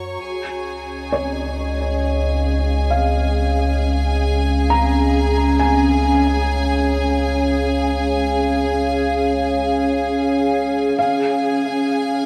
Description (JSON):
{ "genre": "ambient", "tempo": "67 BPM", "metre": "3/4", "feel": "straight", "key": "Db major", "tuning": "A4 = 440 Hz", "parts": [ { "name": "warbly tape-like pad", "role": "sustained chords", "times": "0.0-12.3 s", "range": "Db4 to Bb5", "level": "-22 LUFS", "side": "equal", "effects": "chorus, built-in reverb" }, { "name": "warm sub bass", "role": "bass", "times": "0.0-10.9 s", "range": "Db2 to Gb2", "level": "-24 LUFS", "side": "equal", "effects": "none" }, { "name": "clear studio violin section", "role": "texture", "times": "0.0-12.3 s", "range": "Ab4 to Db6", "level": "-28 LUFS", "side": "equal", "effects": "none" }, { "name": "felt-muted upright piano", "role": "arpeggios", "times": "1.1-12.3 s", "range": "Db5 to Bb5", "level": "-27 LUFS", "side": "equal", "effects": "diffuse ambient delay" } ], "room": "wet huge ambient reverb, RT60 8.7 s", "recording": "none", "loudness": "-19 LUFS", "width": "mono", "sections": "0.2-11.0 A section; 11.0-12.3 B section", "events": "fade-out on sub bass 0.2-11.0; filter sweep on ambient pad 0.2-11.0", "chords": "0.2 Db6; 11.0 Db", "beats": "| 0.23 1.12 2.02 | 2.92 3.81 4.71 | 5.60 6.50 7.39 | 8.29 9.18 10.08 | 10.97 11.87" }